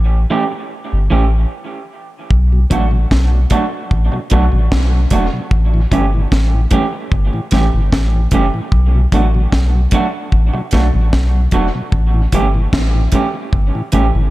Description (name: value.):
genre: dub reggae.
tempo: 75 BPM.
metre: 4/4.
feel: straight.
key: B minor.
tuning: A4 = 442 Hz.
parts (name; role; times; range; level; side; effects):
soft dub sub bass; bass; 0.0-14.3 s; E1 to B1; -13 LUFS; equal; none.
electric guitar at the edge of break-up; accompaniment; 0.3-14.1 s; E3 to G4; -20 LUFS; right 3 dB; spring reverb, dub echo.
deep reggae drum kit; drums; 2.3-14.1 s; hi-hat, kick drum, snare drum; -16 LUFS; equal; none.
mellow tonewheel organ; accompaniment; 2.5-14.2 s; A2 to D4; -23 LUFS; left 2 dB; slow rotary speaker, dub echo.
room: small room reverb.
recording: echo-heavy mix.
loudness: -12 LUFS.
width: side -17 dB against mid.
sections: 0.0-2.3 A section; 2.3-14.3 B section.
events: break 0.0-2.3; stop 1.5-2.3.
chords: 0.0 A7; 2.3 Bm7; 5.5 A7; 8.7 Bm7; 11.9 A7.